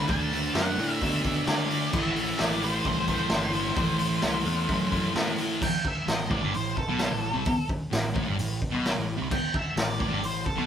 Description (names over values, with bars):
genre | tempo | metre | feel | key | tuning
garage rock duo or trio | 130 BPM | 4/4 | straight | A dorian, A minor from 5.6 s | A4 = 441 Hz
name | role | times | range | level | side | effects
octave-fuzz lead guitar | melody | 0.0-10.7 s | A4 to A5 | -31 LUFS | equal | distortion
thick fuzz guitar | riff | 0.0-10.7 s | G2 to D4 | -28 LUFS | equal | distortion
growling picked electric bass | bass | 0.0-10.7 s | G1 to D3 | -33 LUFS | equal | overdrive
raw garage drum kit | drums | 0.1-10.6 s | crash cymbal, hi-hat, kick drum, snare drum | -29 LUFS | equal | none
room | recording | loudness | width
moderate studio reverb, RT60 0.8 s | band playing live in one room | -24 LUFS | side -9 dB against mid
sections
0.0-5.6 A section; 5.6-10.7 B section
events
lead electric guitar solo 5.6-10.7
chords
0.0 D; 1.9 Am; 5.6 N.C.